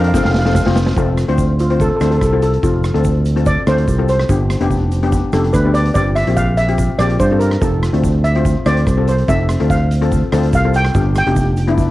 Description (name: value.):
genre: calypso.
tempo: 144 BPM.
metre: 4/4.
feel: straight.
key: F major.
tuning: A4 = 440 Hz.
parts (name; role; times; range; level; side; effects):
steel pan; melody; 0.0-11.8 s; F4 to G5; -20 LUFS; right 1 dB; cassette tape, analog delay.
steel pan; accompaniment; 0.0-11.9 s; B3 to C5; -20 LUFS; left 5 dB; none.
fingered electric bass; bass; 0.0-11.9 s; F1 to G2; -15 LUFS; right 1 dB; transformer saturation.
street-band drum kit; drums; 0.0-11.9 s; hi-hat, kick drum, rim click, snare drum; -21 LUFS; right 1 dB; cassette tape.
tube shaker; percussion; 0.1-11.9 s; none; -39 LUFS; right 8 dB; none.
room: light reverb, small room ambience.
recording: home recording on cassette.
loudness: -12 LUFS.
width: side -16 dB against mid.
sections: 1.0-11.9 A section.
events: drum fill 0.1-1.0; steel pan solo 1.0-11.9.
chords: 0.1 F; 4.3 G7; 6.0 C7sus4/G; 7.6 F; 10.9 G7.